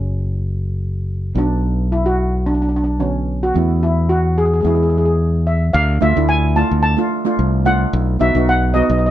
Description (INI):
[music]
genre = calypso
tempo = 110 BPM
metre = 4/4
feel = straight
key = unclear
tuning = A4 = 441 Hz
[part]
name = steel pan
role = accompaniment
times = 0.0-9.0 s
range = D3 to A4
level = -21 LUFS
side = right 3 dB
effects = none
[part]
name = modern bright fingered electric bass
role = bass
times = 0.0-9.1 s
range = F#1 to E2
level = -17 LUFS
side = equal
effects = none
[part]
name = steel pan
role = melody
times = 1.4-9.1 s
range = C#4 to A5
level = -19 LUFS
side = equal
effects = none
[sound]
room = light reverb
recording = none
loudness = -14 LUFS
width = side -12 dB against mid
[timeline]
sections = 0.0-5.7 A section; 5.7-9.1 B section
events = none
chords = 0.0 F#m; 1.4 Bm; 3.6 Esus4; 4.7 E; 5.7 Dm; 7.9 B